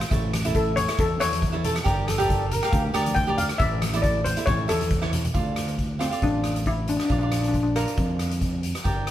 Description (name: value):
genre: calypso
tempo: 137 BPM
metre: 4/4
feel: swing 54% on 16ths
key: D minor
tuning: A4 = 440 Hz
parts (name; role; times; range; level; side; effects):
- steel pan; melody; 0.0-8.6 s; C4 to G5; -26 LUFS; left 3 dB; none
- street-band drum kit; drums; 0.0-9.1 s; hi-hat, kick drum, rim click; -27 LUFS; equal; none
- cavaquinho; accompaniment; 0.1-9.1 s; E4 to F5; -29 LUFS; right 3 dB; none
- fingered electric bass; bass; 0.1-9.1 s; G1 to F2; -27 LUFS; equal; none
- congas; percussion; 0.3-5.3 s; none; -35 LUFS; left 1 dB; none
- mellow horn section; second line; 1.7-3.1 s; G4 to Bb4; -30 LUFS; equal; none
room: moderate stone room reverb, RT60 1.3 s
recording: band playing live in one room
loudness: -21 LUFS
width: side -12 dB against mid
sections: 0.0-5.3 A section; 5.3-9.1 B section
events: steel pan solo 0.0-5.3; drum fill 5.0-5.3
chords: 0.1 A; 1.9 Gm; 3.6 Asus4; 4.5 A; 5.3 Dm; 7.1 Bb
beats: | 0.11 0.55 0.98 1.42 | 1.86 2.29 2.73 3.17 | 3.60 4.04 4.47 4.91 | 5.35 5.79 6.22 6.66 | 7.10 7.54 7.97 8.41 | 8.85